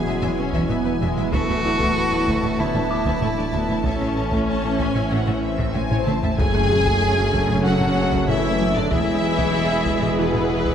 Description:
cinematic, hybrid orchestral and electronic film score; 95 BPM; 4/4; straight; F# minor; A4 = 440 Hz
rich cello; melody; 0.0-6.0 s; C#4 to G#4; -26 LUFS; right 2 dB
warm symphonic violin section; melody; 0.0-10.7 s; B4 to A5; -28 LUFS; left 2 dB
warm studio viola section; accompaniment; 0.0-10.7 s; G#3 to G#4; -28 LUFS; equal
ethereal airy pad; sustained chords; 0.0-10.7 s; E3 to E5; -30 LUFS; equal; ensemble chorus, built-in reverb, phaser
warm French horn section; sustained chords; 0.0-10.7 s; B2 to G#4; -27 LUFS; left 3 dB
warm trombone section; sustained chords; 0.0-10.7 s; A2 to A3; -30 LUFS; right 3 dB
detuned saw bass; bass; 0.0-10.7 s; D1 to A1; -30 LUFS; equal
felt-muted upright piano; texture; 0.0-10.7 s; E4 to D6; -35 LUFS; equal
rich symphonic violin section; second line; 0.1-10.7 s; B3 to E5; -31 LUFS; left 1 dB
soft round pluck; arpeggios; 0.1-10.7 s; D3 to A4; -30 LUFS; right 3 dB
rich symphonic cello section; bass; 0.1-10.7 s; D2 to A2; -28 LUFS; right 1 dB
rich symphonic double bass section; bass; 0.1-10.7 s; E1 to D2; -29 LUFS; right 3 dB
solo taiko drums; drums; 0.2-10.7 s; -28 LUFS; left 1 dB
swell and impact; sound effects; 4.9-8.9 s; -31 LUFS; left 1 dB
wet scoring stage reverb, RT60 1.9 s; -18 LUFS; side -8 dB against mid
0.0-6.4 A section; 6.4-10.7 B section
swell 4.9-6.4; drum fill 5.8-6.4; impact 6.4-8.9
0.0 E; 1.3 Dsus2; 3.9 A; 6.4 F#madd9; 8.9 E
0.07 0.70 | 1.33 1.96 2.60 3.23 | 3.86 4.49 5.12 5.75 | 6.38 7.02 7.65 8.28 | 8.91 9.54 10.17

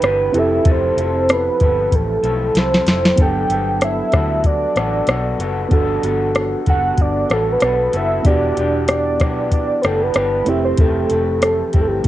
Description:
indie pop, bedroom pop; 95 BPM; 4/4; swing 55% on 16ths; A4 = 440 Hz
soft octave-layered synth lead; melody; 0.0-12.1 s; G4 to G5; -19 LUFS; right 1 dB; analog chorus, cassette tape, plate reverb
electric guitar through a small old amp; accompaniment; 0.0-12.1 s; F2 to B4; -24 LUFS; left 4 dB; wide subtle chorus, vibrato effect, cassette tape, plate reverb
reed electric piano; accompaniment; 0.0-12.1 s; F#3 to B4; -23 LUFS; right 3 dB; cassette tape, plate reverb
vintage muted fingered electric bass; bass; 0.0-12.1 s; E1 to D2; -24 LUFS; equal
soft vintage rhythm box; drums; 0.0-12.1 s; hi-hat, kick drum, rim click, snare drum; -16 LUFS; equal
moderate studio reverb, RT60 0.6 s; home recording on cassette; -14 LUFS; side -14 dB against mid
0.0-12.1 A section
drum fill 2.6-3.2
0.3 Fmaj7; 3.2 Gmaj9; 8.2 Em7; 10.5 Fmaj7
0.03 | 0.66 1.29 1.92 2.55 | 3.19 3.82 4.45 5.08 | 5.71 6.35 6.98 7.62 | 8.25 8.88 9.52 10.15 | 10.79 11.42 12.05

